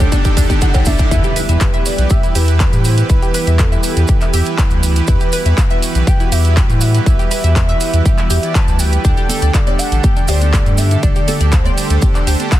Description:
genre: progressive house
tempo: 121 BPM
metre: 4/4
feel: straight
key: E minor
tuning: A4 = 439 Hz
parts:
  - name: lush unison pad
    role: sustained chords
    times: 0.0-12.6 s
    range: D3 to G4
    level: -25 LUFS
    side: right 1 dB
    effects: chorus, sidechain pumping
  - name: analog pluck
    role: arpeggios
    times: 0.0-12.6 s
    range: D4 to E5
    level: -26 LUFS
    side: left 1 dB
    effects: chorus, phaser, sidechain pumping, ping-pong delay
  - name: soft supersaw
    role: stabs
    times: 0.0-12.6 s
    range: D3 to E5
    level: -22 LUFS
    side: right 4 dB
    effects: sidechain pumping, ping-pong delay
  - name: round analog bass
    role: bass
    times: 0.0-12.4 s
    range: A1 to A2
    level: -14 LUFS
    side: equal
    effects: sidechain pumping
  - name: electronic kick drum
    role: drums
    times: 0.0-12.6 s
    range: none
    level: -14 LUFS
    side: equal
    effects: none
  - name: house drum kit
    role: drums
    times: 0.0-12.6 s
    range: handclaps, hi-hat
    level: -24 LUFS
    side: right 1 dB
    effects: overdrive
  - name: cowbell, congas and bongos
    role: percussion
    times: 0.0-1.1, 9.3-12.5 s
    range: none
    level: -28 LUFS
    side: right 3 dB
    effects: sidechain pumping on perc
  - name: maracas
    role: percussion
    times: 0.0-12.6 s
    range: none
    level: -27 LUFS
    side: right 4 dB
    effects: none
  - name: riser and impact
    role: sound effects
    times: 0.0-3.1 s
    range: none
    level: -26 LUFS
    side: equal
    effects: none
  - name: warm velvety synth lead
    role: melody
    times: 0.6-12.6 s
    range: A4 to A5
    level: -24 LUFS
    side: equal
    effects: chorus, sidechain pumping, ping-pong delay
room: little or no reverb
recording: dense, heavily limited modern master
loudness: -11 LUFS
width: side -14 dB against mid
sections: 0.0-1.1 A section; 1.1-12.6 B section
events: build-up 0.0-1.1; drum fill 0.0-1.1; riser 0.0-1.1; drop 1.1-12.6; impact 1.1-3.1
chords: 0.0 Dsus4; 1.1 Em; 9.0 Dsus4

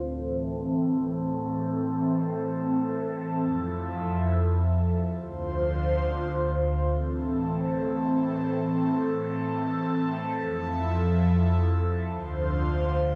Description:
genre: hip hop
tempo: free time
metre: none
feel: none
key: A minor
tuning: A4 = 440 Hz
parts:
  - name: airy breathy pad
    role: solo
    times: 0.0-13.2 s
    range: D2 to C5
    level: -27 LUFS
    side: equal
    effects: chorus, phaser, low-pass filter
room: light reverb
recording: small room ambience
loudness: -27 LUFS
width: mono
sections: 0.0-6.9 A section; 6.9-13.2 B section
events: filter sweep on analog synth pad 0.0-6.9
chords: 0.0 Am; 3.4 Fmaj7; 5.1 Dm7; 6.9 Am; 10.4 Fmaj7; 12.1 Dm7

